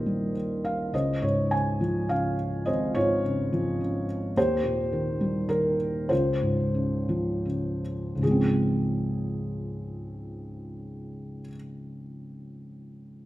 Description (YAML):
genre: classical, lyrical solo piano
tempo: 75-109 BPM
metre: 3/4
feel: rubato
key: Db lydian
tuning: A4 = 440 Hz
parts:
  - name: felt-muted upright piano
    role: solo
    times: 0.0-13.3 s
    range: Ab1 to Ab5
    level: -25 LUFS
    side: equal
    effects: none
room: moderate recital hall reverb, RT60 1.4 s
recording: none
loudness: -24 LUFS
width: side -16 dB against mid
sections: 0.0-8.2 A section; 8.2-12.8 B section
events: slowing down 4.4-8.2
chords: 0.0 Eb; 0.9 Dbmaj7; 4.4 Eb; 6.1 Dbmaj7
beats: 0.35 | 0.93 1.51 2.10 | 2.67 3.24 3.81 | 4.37 4.92 5.49 | 6.10 6.74 7.45 | 8.22 9.01 9.79 | 10.55 11.30 12.07